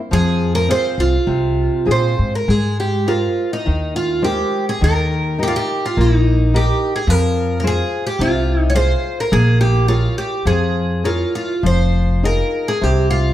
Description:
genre	fado-style ballad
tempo	104 BPM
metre	4/4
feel	uneven beats, rubato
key	Ab major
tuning	A4 = 440 Hz
part	picked twelve-string acoustic guitar	melody	0.1-13.3 s	Eb4 to Db5	-19 LUFS	right 1 dB	none
part	nylon-string guitar	accompaniment	0.1-13.3 s	C3 to Db5	-22 LUFS	left 2 dB	none
part	upright bass	bass	0.1-13.3 s	F1 to Bb2	-17 LUFS	equal	none
room	moderate recital hall reverb, RT60 1.3 s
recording	none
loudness	-15 LUFS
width	side -12 dB against mid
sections	0.0-2.5 A section; 2.5-13.3 B section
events	none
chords	0.1 Fm; 2.5 Abadd9; 4.8 Eb; 7.1 Fm; 9.3 Bbm7; 11.6 Fm7

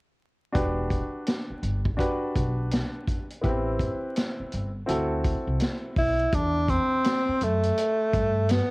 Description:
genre	hip hop, jazz-hop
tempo	83 BPM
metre	4/4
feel	swing 63% on 16ths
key	E minor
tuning	A4 = 440 Hz
part	warm grand piano	accompaniment	0.5-6.1 s	B3 to B4	-30 LUFS	equal	none
part	upright bass	bass	0.5-8.6 s	E1 to G2	-28 LUFS	equal	none
part	vintage drum kit	drums	0.5-8.7 s	hi-hat, kick drum, snare drum	-28 LUFS	equal	cassette tape
part	mellow tenor saxophone	melody	6.0-8.7 s	A3 to E4	-23 LUFS	equal	none
room	light reverb, studio ambience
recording	home recording on cassette, vinyl crackle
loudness	-24 LUFS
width	side -24 dB against mid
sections	0.5-6.3 A section; 6.3-8.7 B section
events	none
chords	0.5 Em7; 3.4 Am7; 4.9 D7; 6.3 Em

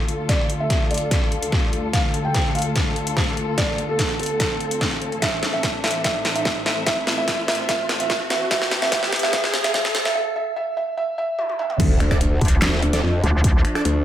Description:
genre	heavy wobble dubstep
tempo	146 BPM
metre	4/4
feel	half-time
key	D minor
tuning	A4 = 440 Hz
part	felt-muted upright piano	melody	0.0-11.8 s	A4 to G5	-25 LUFS	right 2 dB	tape echo
part	muted studio string section	sustained chords	0.0-14.0 s	D2 to E5	-28 LUFS	left 2 dB	sidechain pumping, low-pass filter
part	riser and impact	sound effects	1.4-13.4 s	none	-30 LUFS	equal	none
part	dubstep drum kit	drums	0.1-13.9 s	crash cymbal, finger snaps, handclaps, hi-hat, snare drum, toms	-23 LUFS	equal	high-pass filter on hats, high-pass filter on snare, high-pass filter on toms, high-pass filter on cymbals, high-pass filter on room
part	electronic kick drum	drums	0.3-13.5 s	none	-22 LUFS	equal	none
part	growl bass	bass	11.8-14.0 s	D2 to F2	-20 LUFS	equal	chorus, overdrive
part	supersaw stab	stabs	12.1-13.8 s	D4 to D5	-28 LUFS	right 2 dB	tape echo
part	metallic wobble bass	bass	12.4-13.6 s	D2	-19 LUFS	equal	chorus, overdrive
room	moderate digital room reverb, RT60 1.1 s, digital ambience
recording	high-pass filter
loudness	-18 LUFS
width	side -11 dB against mid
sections	0.0-11.8 A section; 11.8-14.0 B section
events	build-up 0.0-11.8; drum fill 0.0-10.2, 11.4-11.8; filter sweep 0.0-11.8; riser 1.4-10.2; break 10.2-11.8; drop 11.8-14.0; impact 11.8-13.4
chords	0.0 Dm; 5.2 Am; 11.8 Dm

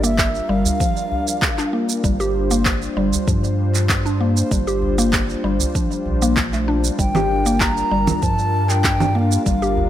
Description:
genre	organic downtempo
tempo	97 BPM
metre	4/4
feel	straight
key	G minor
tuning	A4 = 440 Hz
part	breathy bass bansuri	melody	0.0-1.7, 7.0-9.9 s	E5 to Bb5	-23 LUFS	equal	tape echo
part	warm analog pad	sustained chords	0.0-9.9 s	G3 to C5	-25 LUFS	left 1 dB	wide subtle chorus, sidechain pumping
part	mallet-like synth pluck	arpeggios	0.0-9.9 s	F3 to G4	-22 LUFS	left 1 dB	chorus, tape echo
part	warm sub bass	bass	0.0-9.9 s	G1 to G2	-22 LUFS	equal	sidechain pumping
part	electronic shaker, handclaps and congas	drums	0.0-9.7 s	none	-23 LUFS	right 3 dB	none
part	electronic kick drum	drums	0.2-9.6 s	none	-22 LUFS	equal	none
part	udu	percussion	0.7-9.9 s	none	-27 LUFS	equal	none
room	light reverb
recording	none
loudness	-16 LUFS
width	side -12 dB against mid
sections	0.0-9.9 A section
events	none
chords	0.0 Gm7

